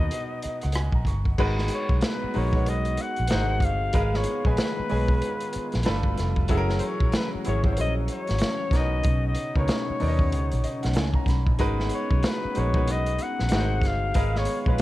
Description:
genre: R&B, neo-soul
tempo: 94 BPM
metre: 4/4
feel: swing 61% on 16ths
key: G# minor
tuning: A4 = 442 Hz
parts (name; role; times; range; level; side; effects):
- clear flugelhorn; melody; 0.0-14.8 s; B4 to F#5; -31 LUFS; left 2 dB; none
- clear concert grand piano; accompaniment; 0.0-14.8 s; B2 to C#6; -30 LUFS; equal; none
- vintage muted fingered electric bass; bass; 0.0-14.8 s; F1 to D#2; -26 LUFS; equal; none
- crunchy breakbeat drum kit; drums; 0.1-14.8 s; crash cymbal, hi-hat, kick drum, rim click, snare drum; -26 LUFS; equal; none
- warm analog pad; sustained chords; 1.4-14.8 s; B2 to F#4; -35 LUFS; equal; chorus
room: small room ambience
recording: dark, warm production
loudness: -22 LUFS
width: side -16 dB against mid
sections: 0.0-1.4 A section; 1.4-14.8 B section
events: grand piano fill 0.1-1.4, 10.3-11.6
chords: 0.0 Bmaj9; 1.4 G#m9; 3.3 G#7; 3.9 C#13/G#; 5.9 G9; 6.5 F#7; 8.7 Bmaj9; 11.6 G#m9; 13.5 G#7; 14.2 C#13/G#

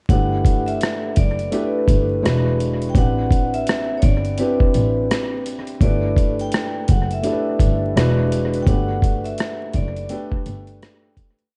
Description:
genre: lo-fi hip hop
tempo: 84 BPM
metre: 4/4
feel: swing 60% on 16ths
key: G major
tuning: A4 = 440 Hz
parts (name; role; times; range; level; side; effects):
- vibraphone with medium hard mallets; melody; 0.1-11.1 s; B4 to G5; -29 LUFS; equal; analog delay
- felt-muted upright piano; accompaniment; 0.1-11.5 s; G#3 to B4; -26 LUFS; equal; cassette tape, analog delay
- warm double bass; bass; 0.1-10.8 s; E1 to A1; -24 LUFS; equal; none
- boom bap sampler-style drum kit; drums; 0.1-11.5 s; hi-hat, kick drum, rim click; -21 LUFS; equal; none
room: studio reverb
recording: echo-heavy mix, vinyl crackle, nothing above 10.9 kHz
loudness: -19 LUFS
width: mono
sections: 0.1-11.5 A section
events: fade-out 8.7-11.5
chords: 0.1 G6; 2.2 E7; 3.0 Am11; 5.8 G6; 8.0 E7; 8.7 Gmaj9

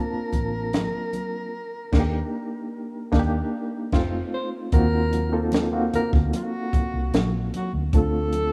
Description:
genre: lush 1970s-style soul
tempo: 75 BPM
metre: 4/4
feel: straight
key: unclear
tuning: A4 = 441 Hz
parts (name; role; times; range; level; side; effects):
- breathy alto saxophone; melody; 0.0-8.5 s; Gb4 to C5; -33 LUFS; equal; none
- barky reed electric piano; accompaniment; 0.0-8.5 s; A3 to A5; -29 LUFS; equal; overdrive, fast tremolo
- vintage muted fingered electric bass; bass; 0.1-8.5 s; F1 to Eb2; -28 LUFS; equal; none
- compact cocktail drum kit; drums; 0.3-8.5 s; crash cymbal, hi-hat, kick drum, snare drum; -25 LUFS; equal; none
- congas; percussion; 0.3-8.5 s; none; -35 LUFS; equal; none
room: light reverb, small room ambience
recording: rough home demo mix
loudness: -24 LUFS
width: mono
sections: 0.0-4.7 A section; 4.7-8.5 B section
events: band accent 1.5-4.7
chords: 0.0 Bbmaj9; 1.5 Ebmaj7; 3.9 F7; 4.7 Ebm6; 7.9 Dm7

